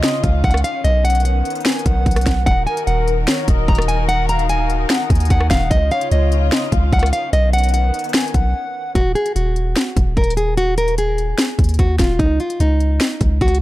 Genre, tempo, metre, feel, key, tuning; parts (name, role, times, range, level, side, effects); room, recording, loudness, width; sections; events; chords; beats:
hip hop, trap; 148 BPM; 4/4; half-time; Eb minor; A4 = 440 Hz
nylon-string guitar; melody; 0.0-13.6 s; Eb4 to Bb5; -21 LUFS; equal; tape echo
breathy flute-like synth lead; second line; 0.0-8.9 s; Bb4 to Ab5; -26 LUFS; left 2 dB; chorus, phaser, tape echo
dark studio string section; sustained chords; 0.0-8.9 s; Db3 to Bb4; -26 LUFS; left 3 dB
trap drum kit; drums; 0.0-13.6 s; finger snaps, hi-hat, kick drum, rim click, snare drum; -18 LUFS; equal
long sustained 808-style bass; bass; 0.2-13.6 s; Eb1 to Eb2; -17 LUFS; equal
digital ambience; dark, warm production; -14 LUFS; side -16 dB against mid
0.0-9.0 A section; 9.0-13.6 B section
break 8.5-9.0
0.0 Dbadd9; 0.8 Badd9; 2.5 Ebm; 5.7 Dbadd9; 7.3 Badd9; 9.0 Ebm; 12.2 Dbsus2
0.03 0.44 | 0.84 1.25 1.66 2.06 | 2.47 2.87 3.28 3.68 | 4.09 4.49 4.90 5.30 | 5.71 6.12 6.52 6.92 | 7.33 7.74 8.14 8.55 | 8.95 9.36 9.76 10.17 | 10.57 10.98 11.38 11.79 | 12.20 12.60 13.01 13.41